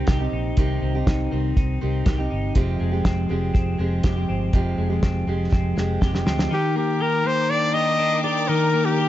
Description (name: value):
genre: jangly indie pop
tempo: 121 BPM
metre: 4/4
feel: straight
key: Eb major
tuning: A4 = 440 Hz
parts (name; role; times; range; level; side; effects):
- fingerpicked steel-string acoustic guitar; accompaniment; 0.0-6.5 s; F2 to G4; -29 LUFS; right 6 dB; none
- twelve-string electric guitar; arpeggios; 0.0-9.1 s; F2 to G4; -25 LUFS; left 2 dB; none
- vintage muted fingered electric bass; bass; 0.0-6.5 s; F1 to D2; -25 LUFS; equal; none
- cloth-damped thuddy drum kit; drums; 0.1-6.5 s; hi-hat, kick drum, snare drum; -21 LUFS; equal; none
- warm trumpet; melody; 6.5-9.1 s; G4 to Eb5; -21 LUFS; left 1 dB; none
- warm studio string section; sustained chords; 6.5-9.1 s; Bb4 to D6; -30 LUFS; left 1 dB; none
room: light reverb, studio ambience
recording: dark, warm production, nothing above 7.7 kHz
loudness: -19 LUFS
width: side -13 dB against mid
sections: 0.0-6.5 A section; 6.5-9.1 B section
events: drum fill 5.5-6.5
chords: 0.0 Cm; 2.6 Fmadd9; 6.5 Ebmaj7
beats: 0.08 | 0.58 1.07 1.57 2.06 | 2.56 3.05 3.55 4.04 | 4.54 5.03 5.53 6.02 | 6.51 7.01 7.50 8.00 | 8.49 8.98